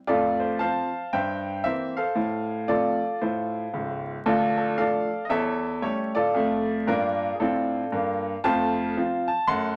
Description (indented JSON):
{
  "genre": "jazz, stride piano",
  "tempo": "115 BPM",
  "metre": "4/4",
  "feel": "swing 62% on 8ths",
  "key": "F major",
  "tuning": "A4 = 440 Hz",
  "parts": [
    { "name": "clear baby grand piano", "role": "solo", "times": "0.1-9.8 s", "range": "Db1 to C6", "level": "-26 LUFS", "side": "equal", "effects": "none" }
  ],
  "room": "wet studio ambience, RT60 0.5 s",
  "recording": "vinyl crackle",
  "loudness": "-26 LUFS",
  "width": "mono",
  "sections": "0.1-9.8 A section",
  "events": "none",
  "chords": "0.1 F; 1.1 C7/G; 2.2 F/A; 4.3 Dm; 5.3 A7/E; 6.4 Dm/F; 8.4 F"
}